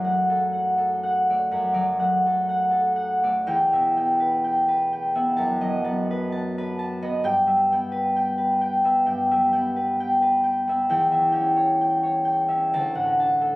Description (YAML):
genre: classical, solo harp piece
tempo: 64 BPM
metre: 4/4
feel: rubato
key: unclear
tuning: A4 = 439 Hz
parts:
  - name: concert harp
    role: solo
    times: 0.0-13.6 s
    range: D2 to A5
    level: -20 LUFS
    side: equal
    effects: none
room: wet stone room reverb, RT60 1.2 s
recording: recorded on a phone in the room, club ambience, compression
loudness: -20 LUFS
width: side -20 dB against mid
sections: 0.0-13.6 A section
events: none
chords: 0.0 D/F#; 3.4 Em; 5.3 B7/F#; 7.2 Em/G; 10.9 C#dim/E; 12.7 D